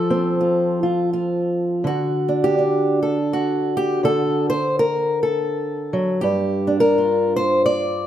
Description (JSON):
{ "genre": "folk, solo fingerstyle acoustic guitar", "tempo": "82 BPM", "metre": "3/4", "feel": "swing 59% on 8ths", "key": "unclear", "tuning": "A4 = 440 Hz", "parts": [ { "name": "fingerpicked old ladder-braced acoustic guitar", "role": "solo", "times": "0.0-8.1 s", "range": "G2 to D5", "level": "-18 LUFS", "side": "equal", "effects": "none" } ], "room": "moderate large studio reverb, RT60 1.3 s", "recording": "none", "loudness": "-17 LUFS", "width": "side -11 dB against mid", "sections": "0.0-1.9 A section; 1.9-8.1 B section", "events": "none", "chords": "0.0 F; 1.9 D; 6.2 Gm7", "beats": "0.40 1.13 | 1.85 2.58 3.31 | 4.04 4.77 5.50 | 6.24 6.97 7.70" }